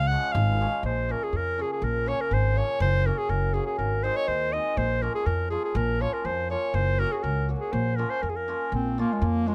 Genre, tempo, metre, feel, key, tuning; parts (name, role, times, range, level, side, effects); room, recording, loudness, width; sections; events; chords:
balkan folk, Balkan wedding band; 122 BPM; 2/4; straight; Bb minor; A4 = 438 Hz
clear clarinet; melody; 0.0-9.5 s; Ab3 to Gb5; -30 LUFS; equal
hammered dulcimer; accompaniment; 0.0-9.5 s; Db3 to Gb4; -35 LUFS; equal
upright bass; bass; 0.0-9.5 s; Gb1 to F2; -29 LUFS; equal
little or no reverb; close, detailed microphones; -26 LUFS; mono
0.8-8.7 A section
0.0 Db; 0.8 Bbm; 2.8 Gb; 3.8 Ab; 4.8 Bbm; 6.7 Gb; 7.7 Bbm